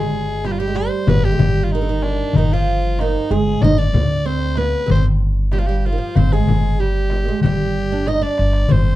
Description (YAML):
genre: Arabic maqam ensemble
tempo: 94 BPM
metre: 4/4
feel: straight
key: G maqam hijaz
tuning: A4 = 437 Hz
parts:
  - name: growling soprano saxophone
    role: melody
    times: 0.0-9.0 s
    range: D4 to Eb5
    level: -23 LUFS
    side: equal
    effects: none
  - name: oud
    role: second line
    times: 0.0-9.0 s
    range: D3 to Eb4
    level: -23 LUFS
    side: right 5 dB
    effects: none
  - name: upright bass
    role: bass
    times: 0.0-9.0 s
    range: G1 to D2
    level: -19 LUFS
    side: equal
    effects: none
  - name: darbuka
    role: percussion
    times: 0.3-8.8 s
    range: none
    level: -22 LUFS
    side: left 4 dB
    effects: none
  - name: frame drum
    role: percussion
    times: 0.4-8.9 s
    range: none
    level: -22 LUFS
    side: left 2 dB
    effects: none
room: light reverb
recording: dark, warm production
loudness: -15 LUFS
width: side -15 dB against mid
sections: 0.0-9.0 A section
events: drum fill 8.1-8.7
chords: none